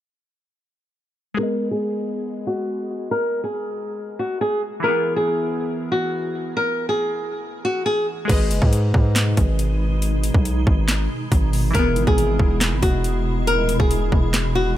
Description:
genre	hip hop, trap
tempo	139 BPM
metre	4/4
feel	half-time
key	G# minor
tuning	A4 = 443 Hz
part	glassy digital keys	accompaniment	1.3-14.8 s	E3 to D#5	-28 LUFS	left 1 dB	chorus, low-pass filter
part	flamenco guitar	melody	1.4-8.1, 11.7-14.8 s	F#4 to A#4	-23 LUFS	equal	low-pass filter, tape echo
part	granular cloud pad	sustained chords	9.2-14.8 s	B2 to E4	-27 LUFS	equal	built-in reverb
part	distorted 808-style bass	bass	8.3-14.7 s	D#1 to G#2	-21 LUFS	equal	distortion
part	trap drum kit	drums	8.3-14.4 s	crash cymbal, handclaps, hi-hat, kick drum, snare drum	-20 LUFS	equal	overdrive
room	digital ambience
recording	none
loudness	-18 LUFS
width	side -12 dB against mid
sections	1.4-8.3 A section; 8.3-14.8 B section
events	filter sweep 1.4-8.3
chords	1.4 G#m; 4.8 E; 8.3 G#m; 11.7 E

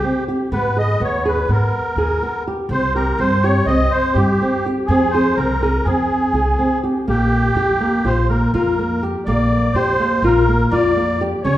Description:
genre	contemporary instrumental, chamber music in an uneven meter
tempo	247 BPM (eighths)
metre	9/8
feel	straight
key	unclear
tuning	A4 = 440 Hz
part	musette accordion	melody	0.0-11.6 s	G4 to Eb5	-20 LUFS	equal	none
part	flamenco guitar	arpeggios	0.0-11.6 s	Bb3 to Ab4	-19 LUFS	equal	none
part	upright bass	bass	0.5-11.6 s	Bb1 to Ab2	-20 LUFS	equal	none
room	wet recital hall reverb, RT60 1.5 s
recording	heard from further back in the room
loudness	-15 LUFS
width	side -14 dB against mid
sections	0.0-7.1 A section; 7.1-11.6 B section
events	none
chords	0.0 Fsus2 (rootless); 0.5 Abmadd9; 2.7 C5; 4.9 Fm; 7.1 Bb6

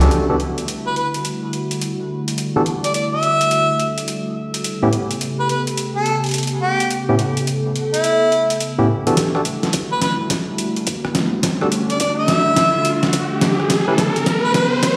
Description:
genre	glitch hop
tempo	106 BPM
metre	4/4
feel	swing 64% on 16ths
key	E dorian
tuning	A4 = 437 Hz
part	warbly tape-like pad	sustained chords	0.0-15.0 s	C#3 to A4	-25 LUFS	equal	chorus, built-in reverb, vintage 12-bit sampler grit, sidechain pumping
part	barky tine electric piano	stabs	0.0-13.9 s	A2 to B4	-22 LUFS	equal	overdrive, sidechain pumping, low-pass filter, tape echo
part	boom bap sampler-style drum kit	drums	0.0-15.0 s	hi-hat, rim click, snare drum	-24 LUFS	equal	none
part	clear harmonica	melody	0.9-14.7 s	E4 to E5	-23 LUFS	equal	tape echo
part	electronic kick drum	drums	9.2-15.0 s	none	-28 LUFS	equal	overdrive, high-pass filter on kick
part	riser	sound effects	10.4-15.0 s	none	-26 LUFS	equal	none
room	wet plate reverb, RT60 1.4 s, digital ambience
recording	played on a big sound system in a bare room, large studio reverb, high-pass filter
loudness	-19 LUFS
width	mono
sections	0.1-9.2 A section; 9.2-15.0 B section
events	band accent 0.0; build-up 9.2-15.0; drum fill 9.2-15.0; filter sweep on tine electric piano 9.2-15.0; riser 10.4-15.0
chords	0.1 Em11; 4.6 A9; 9.2 Em11; 13.7 A9

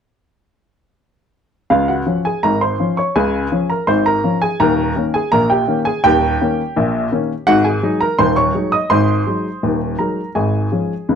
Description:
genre	ragtime piano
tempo	83 BPM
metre	2/4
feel	straight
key	Db major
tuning	A4 = 440 Hz
part	warm upright piano	solo	1.7-11.2 s	Eb1 to Eb6	-14 LUFS	equal	none
room	light reverb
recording	close, detailed microphones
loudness	-14 LUFS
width	side -7 dB against mid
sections	1.7-11.2 A section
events	none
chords	1.7 Db; 4.6 Eb7; 7.5 Ab7; 10.4 Db/Ab

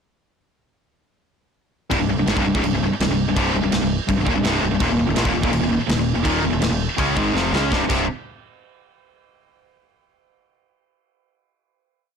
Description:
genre	heavy metal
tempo	165 BPM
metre	4/4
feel	straight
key	C phrygian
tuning	A4 = 440 Hz
part	distorted electric guitar	riff	1.9-8.0 s	C2 to Db4	-24 LUFS	equal	distortion
part	tight distorted guitar	riff	1.9-8.0 s	C2 to Db4	-23 LUFS	left 11 dB	distortion
part	tight distorted guitar	riff	1.9-8.0 s	C2 to Db4	-24 LUFS	right 11 dB	distortion
part	growling picked electric bass	bass	1.9-8.1 s	C1 to Db2	-25 LUFS	equal	overdrive
part	tight metal drum kit	drums	1.9-8.0 s	crash cymbal, kick drum, snare drum	-25 LUFS	right 1 dB	none
room	little or no reverb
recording	blown-out, overdriven recording, overdrive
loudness	-18 LUFS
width	side -6 dB against mid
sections	1.9-7.7 riff; 7.7-9.2 final chord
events	drum fill 7.4-7.7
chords	1.9 Cm; 4.8 Eb5; 7.7 C5

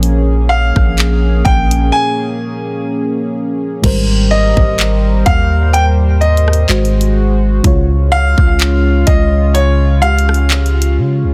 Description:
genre	contemporary R&B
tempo	63 BPM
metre	4/4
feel	swing 54% on 16ths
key	Ab major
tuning	A4 = 439 Hz
part	mellow FM electric piano	accompaniment	0.0-11.3 s	Ab2 to Db5	-22 LUFS	equal	chorus
part	warm analog pad	sustained chords	0.0-11.3 s	Db3 to C5	-22 LUFS	equal	chorus
part	long sustained 808-style bass	bass	0.0-11.3 s	Ab1 to Db3	-15 LUFS	equal	none
part	pop drum kit	drums	0.0-11.0 s	crash cymbal, handclaps, hi-hat, kick drum, rim click	-17 LUFS	equal	none
part	clear baby grand piano	melody	0.5-10.9 s	Db5 to Ab5	-19 LUFS	equal	tape echo
room	little or no reverb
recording	dense, heavily limited modern master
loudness	-12 LUFS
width	mono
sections	0.0-3.8 A section; 3.8-11.3 A section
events	break 1.9-3.8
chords	0.0 Bbm7; 3.8 Abmaj9; 6.7 Ab7; 7.6 Db

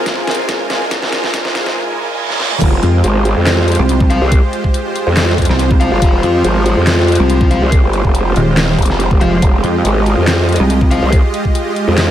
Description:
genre	heavy wobble dubstep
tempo	141 BPM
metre	4/4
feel	half-time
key	F minor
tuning	A4 = 440 Hz
part	supersaw pad	sustained chords	0.0-12.1 s	Ab3 to Ab5	-18 LUFS	right 2 dB	sidechain pumping
part	riser and reverse cymbal	sound effects	0.0-2.6 s	none	-24 LUFS	right 4 dB	none
part	dark studio string section	texture	0.0-1.8 s	F4 to C5	-24 LUFS	left 2 dB	sidechain pumping
part	dubstep drum kit	drums	0.1-12.1 s	crash cymbal, handclaps, hi-hat, snare drum, toms	-18 LUFS	equal	none
part	electronic kick drum	drums	0.1-11.5 s	none	-13 LUFS	equal	none
part	growl bass	bass	2.6-12.1 s	F1 to F2	-13 LUFS	equal	chorus, overdrive
part	pulsing pluck wobble bass	bass	2.8-11.0 s	Eb1 to F2	-12 LUFS	equal	chorus, overdrive
part	thick fuzz guitar	stabs	4.1-11.0 s	F4 to F5	-20 LUFS	left 4 dB	distortion, tape echo
room	little or no reverb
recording	high-pass filter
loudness	-11 LUFS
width	side -11 dB against mid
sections	0.0-2.6 A section; 2.6-12.1 B section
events	build-up 0.0-2.6; drum fill 0.0-1.8, 2.3-2.6; riser 0.0-2.6; reverse cymbal 1.8-2.6; drop 2.6-12.1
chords	0.0 Fm; 2.6 Fmadd9

